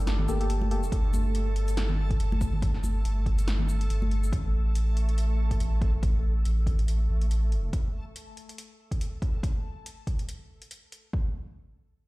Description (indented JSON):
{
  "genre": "deep dubstep",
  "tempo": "141 BPM",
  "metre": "4/4",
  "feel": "swing 56% on 16ths, half-time",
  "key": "unclear",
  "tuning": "A4 = 440 Hz",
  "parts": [
    { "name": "overtone-sweeping drone", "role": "sustained chords", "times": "0.0-0.9 s", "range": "G3 to A4", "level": "-42 LUFS", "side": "right 1 dB", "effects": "chorus, built-in reverb, phaser" },
    { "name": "soft dub sub bass", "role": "bass", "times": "0.0-7.7 s", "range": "G1 to A1", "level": "-25 LUFS", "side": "equal", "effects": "none" },
    { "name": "downlifter", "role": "sound effects", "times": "0.0-0.9 s", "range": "none", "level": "barely audible", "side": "none", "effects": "none" },
    { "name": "backwards swelling texture", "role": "texture", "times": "0.0-7.7 s", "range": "A3 to A4", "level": "-40 LUFS", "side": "equal", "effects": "built-in reverb" },
    { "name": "deep house drum kit", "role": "drums", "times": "0.1-11.0 s", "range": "hi-hat, shaker, snare drum", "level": "-39 LUFS", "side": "left 1 dB", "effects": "overdrive" },
    { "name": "congas", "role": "percussion", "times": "0.1-4.1 s", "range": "none", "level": "-36 LUFS", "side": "equal", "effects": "dub echo" },
    { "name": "percussive organ stab", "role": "stabs", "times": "0.3-0.8 s", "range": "Bb3 to A4", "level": "-37 LUFS", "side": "left 4 dB", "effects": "chorus, dub echo" },
    { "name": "electronic kick drum", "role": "drums", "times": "0.9-11.2 s", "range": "none", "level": "-28 LUFS", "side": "equal", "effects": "overdrive" }
  ],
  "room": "digital ambience",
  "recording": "played on a big sound system in a bare room, stone room reverb",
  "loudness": "-25 LUFS",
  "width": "side -20 dB against mid",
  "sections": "0.0-11.1 A section",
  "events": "none",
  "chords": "0.0 Gmadd9; 4.3 N.C.",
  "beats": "0.07 0.50 | 0.92 1.35 1.77 2.20 | 2.62 3.05 3.48 3.90 | 4.33 4.75 5.18 5.60 | 6.03 6.46 6.88 7.31 | 7.73 8.16 8.58 9.01 | 9.43 9.86 10.29 10.71 | 11.14"
}